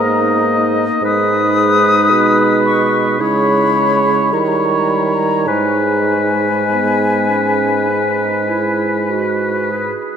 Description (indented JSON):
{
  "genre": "classical, slow romantic movement for wind quintet",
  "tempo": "49-56 BPM",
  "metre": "4/4",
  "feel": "rubato",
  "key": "G# minor",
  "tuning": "A4 = 440 Hz",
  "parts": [
    { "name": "mellow silver concert flute", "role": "melody", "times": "0.0-9.1 s", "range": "G#5 to D#6", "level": "-18 LUFS", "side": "left 4 dB", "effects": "none" },
    { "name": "warm oboe", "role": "second line", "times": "0.0-9.9 s", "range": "B4 to D#5", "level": "-18 LUFS", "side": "left 1 dB", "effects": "none" },
    { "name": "mellow French horn", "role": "accompaniment", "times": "0.0-10.0 s", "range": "G3 to A#3", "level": "-20 LUFS", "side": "equal", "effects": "none" },
    { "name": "warm clarinet", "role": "accompaniment", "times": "0.0-10.2 s", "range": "B3 to G#4", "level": "-22 LUFS", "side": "right 5 dB", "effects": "none" },
    { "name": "mellow bassoon", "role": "bass", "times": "0.0-10.0 s", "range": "G#2 to D#3", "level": "-19 LUFS", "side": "right 3 dB", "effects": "none" }
  ],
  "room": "wet cathedral reverb, RT60 4.8 s",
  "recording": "in a vast, echoing space",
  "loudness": "-12 LUFS",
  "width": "side -8 dB against mid",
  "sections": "0.0-10.2 A section",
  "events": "none",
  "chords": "0.0 D#5/G#; 1.0 G#m; 3.2 C#m; 4.3 D#7b9; 5.5 G#m",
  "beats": "| 1.03 2.10 3.20 4.32 | 5.48 6.68 7.89 9.10"
}